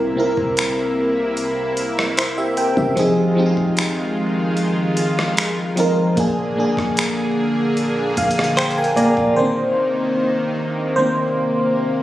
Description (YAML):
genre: contemporary R&B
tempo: 75 BPM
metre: 4/4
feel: straight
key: C minor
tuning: A4 = 440 Hz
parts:
  - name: FM electric piano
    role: accompaniment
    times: 0.0-12.0 s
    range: Bb2 to Bb5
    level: -18 LUFS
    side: equal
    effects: chorus, phaser
  - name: lush unison pad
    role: sustained chords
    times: 0.0-12.0 s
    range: C3 to Ab4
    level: -24 LUFS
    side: equal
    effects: chorus
  - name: clean 808-style bass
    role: bass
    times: 0.0-9.4 s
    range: F1 to C3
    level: -30 LUFS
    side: equal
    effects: none
  - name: dusty soul sampler-style drum kit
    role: drums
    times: 0.4-9.4 s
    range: finger snaps, hi-hat, kick drum, rim click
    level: -23 LUFS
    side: equal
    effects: overdrive
  - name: direct-recorded clean electric guitar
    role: arpeggios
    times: 8.6-9.6 s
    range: F4 to C5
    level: -24 LUFS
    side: equal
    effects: tremolo, tape echo
room: light reverb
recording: recorded on a phone in the room, studio reverb, compression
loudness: -16 LUFS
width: side -14 dB against mid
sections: 0.0-9.4 A section; 9.4-12.0 B section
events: FM electric piano fill 7.8-9.4; FM electric piano solo 9.4-12.0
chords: 0.0 C7; 3.0 Fm7; 6.2 Bb7; 9.4 Cm7